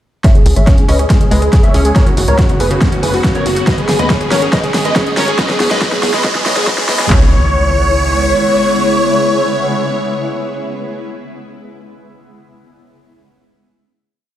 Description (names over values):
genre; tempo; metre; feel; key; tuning
uplifting trance; 140 BPM; 4/4; straight; C# minor; A4 = 442 Hz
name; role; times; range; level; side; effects
big supersaw lead; melody; 0.2-11.1 s; F#4 to E5; -17 LUFS; equal; phaser, sidechain pumping, low-pass filter, digital delay
plucky unison lead; second line; 0.2-11.1 s; F#4 to E5; -21 LUFS; equal; sidechain pumping
shimmering ambient pad; sustained chords; 1.0-11.1 s; C#3 to E4; -21 LUFS; left 1 dB; chorus, built-in reverb, phaser, vintage 12-bit sampler grit, sidechain pumping
analog pluck; arpeggios; 0.2-7.3 s; G#2 to C#4; -20 LUFS; left 1 dB; chorus, sidechain pumping, tape echo
big-room dance drum kit; drums; 0.2-7.1 s; hi-hat, snare drum; -19 LUFS; equal; overdrive, studio reverb, sidechain pumping on hats
punchy analog drum machine; drums; 0.2-7.2 s; handclaps, kick drum; -12 LUFS; equal; studio reverb
riser and impact; sound effects; 2.5-11.1 s; none; -23 LUFS; equal; none
tight sequencer bass; bass; 0.5-8.3 s; F#1 to E2; -16 LUFS; equal; sidechain pumping
room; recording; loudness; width
moderate digital room reverb, RT60 1.1 s, digital ambience; played on a big sound system in a bare room, stone room reverb, high-pass filter; -10 LUFS; side -12 dB against mid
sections
0.2-7.1 build; 7.1-10.5 final chord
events
build-up 0.2-7.1; drum fill 0.2-7.1; filter sweep on supersaw synth 0.2-7.1; filter sweep on synth pluck 0.2-7.1; filter sweep on digital synth lead 0.2-7.1; filter sweep 0.2-7.1; riser 2.5-7.1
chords
0.2 C#m7; 2.0 F#sus4; 3.7 G#m7; 5.4 Emaj7; 7.1 C#m7